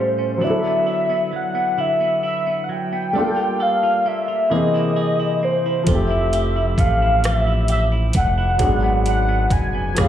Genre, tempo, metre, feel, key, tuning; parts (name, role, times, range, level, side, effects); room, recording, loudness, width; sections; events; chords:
slow six-eight R&B; 44 BPM (dotted quarters); 6/8; straight; A4 = 440 Hz
warm velvety synth lead; melody; 0.0-10.1 s; C5 to G#5; -20 LUFS; equal; chorus, slapback echo, tape echo
clean electric guitar; second line; 0.0-10.1 s; G#2 to A4; -28 LUFS; right 5 dB; slapback echo
warm concert grand piano; accompaniment; 0.0-10.1 s; E3 to D#5; -24 LUFS; left 2 dB; slapback echo
smooth gliding synth bass; bass; 5.9-10.1 s; F1 to C#2; -20 LUFS; equal
smooth R&B drum kit; drums; 5.9-10.1 s; hi-hat, kick drum, rim click; -21 LUFS; equal
light reverb, digital ambience; live gig heard through the venue's PA, club reverb; -17 LUFS; side -10 dB against mid
0.0-10.1 A section
0.4 D69; 3.1 Gm9; 4.5 C7alt; 5.9 Fmaj9; 8.6 G#m7b5